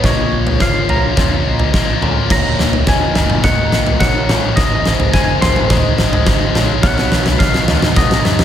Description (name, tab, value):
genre	post-rock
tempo	106 BPM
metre	4/4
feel	straight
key	Eb minor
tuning	A4 = 440 Hz
part	twangy electric guitar	melody	0.0-8.4 s	Db5 to C6	-21 LUFS	equal	wide subtle chorus, slapback echo
part	electric guitar through a small old amp	arpeggios	0.0-8.4 s	Eb2 to F#4	-26 LUFS	left 4 dB	phaser, slapback echo
part	vibraphone with medium mallets	arpeggios	0.0-8.4 s	C5 to Eb5	-24 LUFS	right 1 dB	slapback echo
part	tight distorted guitar	riff	0.0-8.4 s	Eb2 to B3	-20 LUFS	left 6 dB	distortion, slapback echo
part	vintage muted fingered electric bass	bass	0.0-8.4 s	Eb1 to F#2	-21 LUFS	equal	none
part	huge arena drum kit	drums	0.0-8.4 s	crash cymbal, kick drum, snare drum, toms	-14 LUFS	right 1 dB	none
room	moderate lush hall reverb, RT60 1.8 s, small room ambience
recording	big arena sound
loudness	-11 LUFS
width	side -10 dB against mid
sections	0.0-8.4 A section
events	build-up 0.0-8.4; drum fill 0.0-8.4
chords	0.0 Bbm; 2.3 Ebm; 4.6 Ab; 6.8 B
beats	| 0.04 0.61 1.17 1.74 | 2.31 2.88 3.44 4.01 | 4.57 5.14 5.70 6.27 | 6.83 7.40 7.96